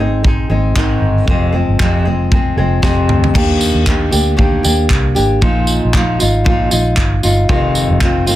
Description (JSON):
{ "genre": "acoustic pop", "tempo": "116 BPM", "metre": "4/4", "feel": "swing 55% on 16ths", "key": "Eb major", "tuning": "A4 = 442 Hz", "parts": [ { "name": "nylon-string guitar", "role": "accompaniment", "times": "0.0-8.4 s", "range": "F2 to Ab4", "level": "-15 LUFS", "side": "equal", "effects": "none" }, { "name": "vintage muted fingered electric bass", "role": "bass", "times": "0.0-8.4 s", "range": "F1 to Eb2", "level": "-16 LUFS", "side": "equal", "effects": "none" }, { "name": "modern studio drum kit", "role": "drums", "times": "0.2-8.4 s", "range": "crash cymbal, handclaps, kick drum, snare drum, tambourine, toms", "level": "-16 LUFS", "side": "equal", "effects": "none" } ], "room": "light reverb", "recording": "dense, heavily limited modern master", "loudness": "-11 LUFS", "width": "side -14 dB against mid", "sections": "0.0-3.3 A section; 3.3-8.4 B section", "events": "drum fill 2.8-3.3", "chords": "0.0 Ab; 1.3 Fm; 3.3 Ebmaj7; 5.4 Bb7sus4; 7.5 Fm7" }